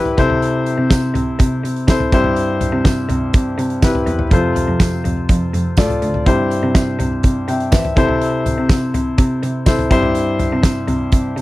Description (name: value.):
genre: piano-driven pop.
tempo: 123 BPM.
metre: 4/4.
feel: straight.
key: C major.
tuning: A4 = 435 Hz.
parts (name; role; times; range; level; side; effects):
warm grand piano; accompaniment; 0.0-11.4 s; G2 to G5; -18 LUFS; left 2 dB; none.
clear cello; bass; 0.0-11.4 s; D2 to E3; -20 LUFS; equal; none.
loose indie drum kit; drums; 0.1-11.4 s; hi-hat, kick drum, snare drum, toms; -16 LUFS; equal; none.
tambourine; percussion; 0.9-10.8 s; none; -35 LUFS; right 12 dB; none.
room: little or no reverb.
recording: dry, close 1970s-style studio recording.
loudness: -14 LUFS.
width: side -18 dB against mid.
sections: 0.0-11.4 A section.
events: none.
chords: 0.2 Am/C; 2.1 C; 4.3 F; 6.3 C; 8.0 Am/C; 9.9 C.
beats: | 0.42 0.91 1.40 1.88 | 2.37 2.86 3.34 3.83 | 4.32 4.80 5.29 5.78 | 6.26 6.75 7.23 7.72 | 8.21 8.69 9.18 9.66 | 10.15 10.64 11.12.